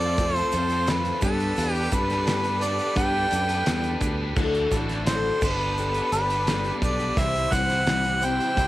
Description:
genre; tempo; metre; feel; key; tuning
folk rock and heartland rock; 86 BPM; 4/4; straight; unclear; A4 = 439 Hz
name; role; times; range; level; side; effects
clear harmonica; melody; 0.0-8.7 s; A4 to G5; -26 LUFS; right 1 dB; analog delay
picked steel-string acoustic guitar; accompaniment; 0.0-8.7 s; C3 to C5; -30 LUFS; left 5 dB; cassette tape
rich studio string section; sustained chords; 0.0-8.7 s; B3 to C5; -33 LUFS; right 1 dB; cassette tape
cranked stack guitar; riff; 0.0-8.7 s; C3 to C5; -33 LUFS; equal; overdrive, cassette tape
fingered electric bass; bass; 0.0-8.7 s; G1 to G2; -29 LUFS; right 1 dB; none
loose indie drum kit; drums; 0.0-8.7 s; crash cymbal, hi-hat, kick drum, snare drum; -29 LUFS; right 1 dB; cassette tape
tube shaker; percussion; 0.0-8.7 s; none; -42 LUFS; right 8 dB; none
room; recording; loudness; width
little or no reverb; home recording on cassette; -21 LUFS; side -16 dB against mid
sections
0.0-8.7 A section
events
none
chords
0.0 F; 1.2 Gadd9; 4.4 Dadd9; 5.4 Gadd9; 7.2 C

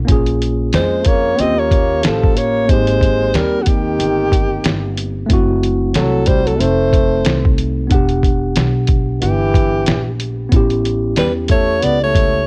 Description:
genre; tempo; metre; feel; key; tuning
hip hop, jazz-hop; 92 BPM; 4/4; swing 59% on 16ths; unclear; A4 = 440 Hz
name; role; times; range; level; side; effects
mellow tine electric piano; accompaniment; 0.0-12.5 s; A3 to F#5; -23 LUFS; equal; cassette tape
upright bass; bass; 0.0-12.4 s; E1 to E#2; -22 LUFS; equal; none
lo-fi sampler-style drum kit; drums; 0.1-12.3 s; hi-hat, kick drum, snare drum; -18 LUFS; equal; cassette tape
warm trombone; second line; 0.7-12.5 s; D3 to C4; -24 LUFS; equal; cassette tape
breathy alto saxophone; melody; 0.8-12.5 s; F#4 to D#5; -20 LUFS; equal; cassette tape
room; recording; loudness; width
little or no reverb; home recording on cassette; -15 LUFS; mono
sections
0.0-12.5 A section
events
none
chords
0.1 A#m7; 1.4 D#9; 2.7 G#maj9; 5.3 F#m7b5; 6.6 F7; 7.9 Em9; 10.5 A9

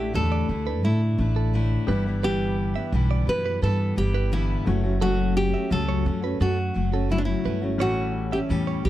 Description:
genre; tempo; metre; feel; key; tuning
acoustic pop; 86 BPM; 4/4; straight; unclear; A4 = 439 Hz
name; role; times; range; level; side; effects
nylon-string guitar; melody; 0.0-8.9 s; D4 to B4; -28 LUFS; right 1 dB; none
clear grand piano; accompaniment; 0.0-8.9 s; G3 to F#5; -38 LUFS; left 5 dB; none
fingerpicked steel-string acoustic guitar; accompaniment; 0.0-8.9 s; F#2 to G4; -27 LUFS; left 4 dB; none
direct-recorded clean electric guitar; arpeggios; 0.0-8.8 s; A4 to E5; -33 LUFS; right 12 dB; none
upright bass; bass; 0.0-8.9 s; F#1 to A2; -24 LUFS; equal; none
room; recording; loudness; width
little or no reverb; dry, close 1970s-style studio recording; -21 LUFS; side -14 dB against mid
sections
0.0-8.9 A section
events
none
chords
0.0 Asus4; 1.9 Em7/G; 4.7 F#m; 7.8 A7

